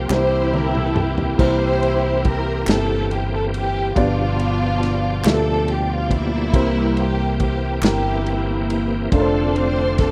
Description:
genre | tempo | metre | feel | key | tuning
slow gospel | 46 BPM (dotted quarters) | 6/8 | straight | unclear | A4 = 439 Hz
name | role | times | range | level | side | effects
warm studio string section | melody | 0.0-10.1 s | G3 to C5 | -24 LUFS | equal | none
warm upright piano | accompaniment | 0.0-10.1 s | G2 to E5 | -28 LUFS | equal | none
bright tonewheel organ | sustained chords | 0.0-10.1 s | B2 to G4 | -28 LUFS | equal | slow rotary speaker, chorus vibrato
fingered electric bass | bass | 0.0-10.1 s | F1 to D2 | -25 LUFS | equal | none
warm soul drum kit | drums | 0.1-10.1 s | crash cymbal, kick drum, ride cymbal, snare drum, toms | -23 LUFS | equal | none
group handclap | percussion | 0.1-8.2 s | none | -31 LUFS | equal | none
room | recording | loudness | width
small room ambience | rough home demo mix | -19 LUFS | mono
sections
0.0-10.1 A section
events
drum fill 0.1-1.4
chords
0.1 C7; 4.0 G7; 6.5 C7; 9.1 F6

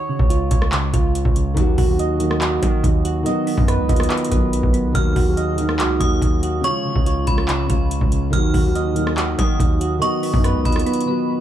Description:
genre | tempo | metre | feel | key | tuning
hip hop, trap | 142 BPM | 4/4 | half-time | Eb minor | A4 = 439 Hz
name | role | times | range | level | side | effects
soft electric-piano-like synth keys | arpeggios | 0.0-11.4 s | Db3 to Eb5 | -22 LUFS | right 5 dB | chorus, low-pass filter, tape echo
distorted 808-style bass | bass | 0.2-10.9 s | B1 to Eb3 | -23 LUFS | equal | distortion
booming analog drum machine | drums | 0.2-11.1 s | handclaps, hi-hat, kick drum, rim click | -20 LUFS | equal | overdrive
felt-muted upright piano | accompaniment | 1.5-11.4 s | Db3 to Ab4 | -23 LUFS | left 4 dB | low-pass filter
metallic FM bell | second line | 5.0-11.4 s | Cb6 to F6 | -27 LUFS | right 1 dB | chorus, phaser, tape echo
room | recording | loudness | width
light reverb, digital ambience | none | -16 LUFS | side -11 dB against mid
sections
0.0-11.4 A section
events
break 0.0-1.6, 10.9-11.4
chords
0.0 Db; 1.6 Ebm; 3.3 B; 4.9 Ebm; 6.6 Db; 8.3 Ebm; 10.0 B

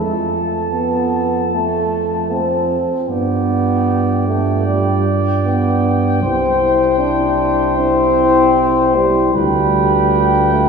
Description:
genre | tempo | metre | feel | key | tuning
classical, brass quintet | 76 BPM | 4/4 | rubato | C major | A4 = 436 Hz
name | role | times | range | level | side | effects
mellow trumpet | melody | 0.0-10.7 s | G5 to A5 | -23 LUFS | left 6 dB | none
warm flugelhorn | second line | 0.0-10.7 s | A4 to D5 | -21 LUFS | right 2 dB | none
clear trombone | accompaniment | 0.0-10.7 s | G3 to D4 | -17 LUFS | equal | none
mellow French horn | accompaniment | 0.0-10.7 s | E4 to F4 | -24 LUFS | left 4 dB | none
mellow tuba | bass | 0.0-10.7 s | C2 to G2 | -19 LUFS | right 3 dB | none
room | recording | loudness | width
wet recital hall reverb, RT60 1.8 s | recorded in a church or concert hall | -13 LUFS | side -5 dB against mid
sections
0.0-10.7 A section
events
none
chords
0.0 F; 3.1 G7; 6.2 C; 9.3 G7/D

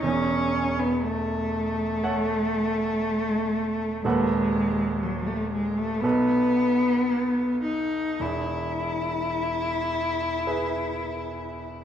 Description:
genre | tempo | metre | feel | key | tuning
classical, romantic duo for cello and grand piano | 53-61 BPM | 4/4 | rubato | E major | A4 = 441 Hz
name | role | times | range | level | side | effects
warm cello | melody | 0.0-11.8 s | F#3 to E4 | -25 LUFS | left 1 dB | none
clear baby grand piano | accompaniment | 0.0-11.8 s | D#1 to F#5 | -29 LUFS | right 3 dB | none
room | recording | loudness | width
moderate recital hall reverb, RT60 1.5 s | none | -23 LUFS | side -9 dB against mid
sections
0.0-11.8 A section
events
none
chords
0.0 F#m7/E; 4.0 B7/D#; 6.0 B7; 8.2 E

